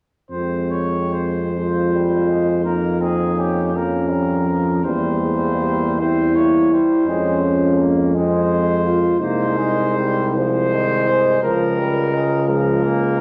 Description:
classical, hymn-like piece for brass band; 47-58 BPM (dotted quarters); 6/8; rubato; F minor, Ab major from 9.2 s; A4 = 439 Hz
clear cornet; melody; 0.3-13.2 s; G4 to Db5; -27 LUFS; equal
dark French horn section; second line; 0.3-13.2 s; Bb3 to C5; -23 LUFS; equal
warm euphonium; accompaniment; 0.3-13.2 s; F3 to Bb3; -30 LUFS; equal
warm tuba; bass; 0.3-13.2 s; C2 to F2; -23 LUFS; equal
bright trombone; accompaniment; 1.5-13.2 s; Eb3 to Db4; -28 LUFS; equal
wet stone room reverb, RT60 1.2 s; -18 LUFS; mono
0.3-13.2 A section
0.3 Fm; 2.7 Gm7b5/F; 4.8 C7/E; 7.1 Fm; 9.2 Ab/C; 11.4 Bbm7/Db

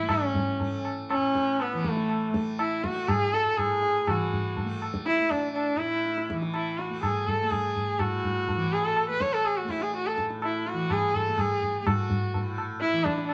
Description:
indian classical, Hindustani; 123 BPM; 4/4; straight; A raga bilaval; A4 = 440 Hz
rich sarangi; melody; 0.0-13.3 s; A3 to C#5; -29 LUFS; equal
tanpura; drone; 0.0-13.3 s; A2 to A3; -38 LUFS; equal
tabla; percussion; 0.1-13.3 s; -33 LUFS; equal
moderate studio reverb, RT60 0.6 s; -27 LUFS; mono
0.0-4.1 A section; 4.1-13.3 B section
speeding up 0.0-13.3

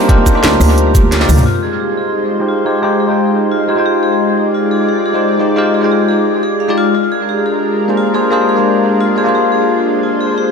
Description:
liquid drum and bass; 175 BPM; 4/4; straight; F dorian; A4 = 440 Hz
bell-like tine electric piano; accompaniment; 0.0-10.5 s; Ab3 to G5; -15 LUFS; left 1 dB; phaser, low-pass filter, dub echo
lush unison pad; sustained chords; 0.0-10.5 s; G3 to D5; -17 LUFS; left 2 dB; chorus, sidechain pumping
vibraphone with medium hard mallets; arpeggios; 0.0-10.5 s; F4 to F5; -17 LUFS; right 2 dB; auto-pan, low-pass filter, tape echo
drum and bass drum kit; drums; 0.1-1.4 s; cabasa, hi-hat, rim click, snare drum, toms; -17 LUFS; equal; tape echo
electronic kick drum; drums; 0.1-1.0 s; -10 LUFS; equal
congas and bongos; percussion; 0.2-1.4 s; -23 LUFS; right 4 dB
upright bass; bass; 0.4-1.4 s; D2; -12 LUFS; equal
moderate echo chamber reverb, RT60 2.0 s, digital ambience; echo-heavy mix; -11 LUFS; side -5 dB against mid
0.0-1.5 A section; 1.5-10.5 B section
drop 0.0-1.5; drum fill 1.1-1.5
0.0 Cm7; 1.5 Fm7; 6.9 Bb7

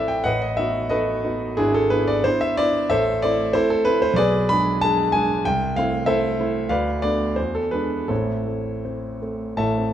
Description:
classical, romantic character piece for solo piano; 79-98 BPM; 2/4; rubato; A minor; A4 = 442 Hz
warm grand piano; solo; 0.0-9.9 s; G#1 to B5; -19 LUFS; equal
wet recital hall reverb, RT60 1.5 s; dark, warm production; -19 LUFS; side -10 dB against mid
0.0-9.6 A section
0.3 B7/A; 1.6 E7/G#; 2.9 Am; 4.2 G#dim/B; 5.4 Am/C; 6.7 Bm7b5/D; 7.4 E7; 8.1 Am

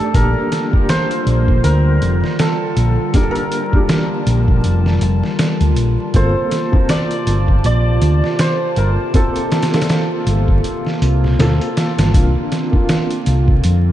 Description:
trip hop; 80 BPM; 4/4; swing 57% on 16ths; A4 = 441 Hz
hammered dulcimer; melody; 0.0-12.1 s; G4 to D5; -23 LUFS; equal; tape echo
felt-muted upright piano; accompaniment; 0.0-13.9 s; A3 to Bb4; -23 LUFS; equal; tremolo, tape echo
warbly tape-like pad; sustained chords; 0.0-13.9 s; C3 to A5; -23 LUFS; equal; chorus, built-in reverb
hollow-body short-scale fingered electric bass; bass; 0.1-13.9 s; F1 to F2; -14 LUFS; equal
trip hop sampler-style drum kit; drums; 0.1-13.8 s; hi-hat, kick drum, snare drum; -18 LUFS; equal
moderate huge ambient reverb, RT60 4.7 s; dreamy mix soaked in reverb, vinyl crackle, nothing above 10.5 kHz; -13 LUFS; side -12 dB against mid
0.1-13.9 A section
0.1 Bb6; 6.1 Gm11; 12.1 C9sus4

